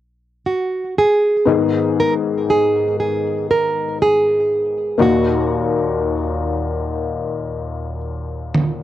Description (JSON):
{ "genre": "pop ballad", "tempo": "59 BPM", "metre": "4/4", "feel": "straight", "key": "G# minor", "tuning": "A4 = 441 Hz", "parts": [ { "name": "nylon-string guitar", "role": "melody", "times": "0.5-8.0 s", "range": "F#4 to A#4", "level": "-17 LUFS", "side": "right 2 dB", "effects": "cassette tape" }, { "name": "felt-muted upright piano", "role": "accompaniment", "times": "1.5-8.8 s", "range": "D#2 to G#4", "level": "-19 LUFS", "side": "left 4 dB", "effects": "cassette tape" }, { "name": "electronic toms", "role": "drums", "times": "8.5-8.8 s", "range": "none", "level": "-16 LUFS", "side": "right 2 dB", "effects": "cassette tape" } ], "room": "moderate booth ambience, RT60 0.2 s", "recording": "home recording on cassette, faint mains hum", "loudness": "-16 LUFS", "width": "side -12 dB against mid", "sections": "0.0-1.5 A section; 1.5-8.8 B section", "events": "drum fill 8.5", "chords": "0.0 N.C.; 1.5 G#m; 5.0 D#m" }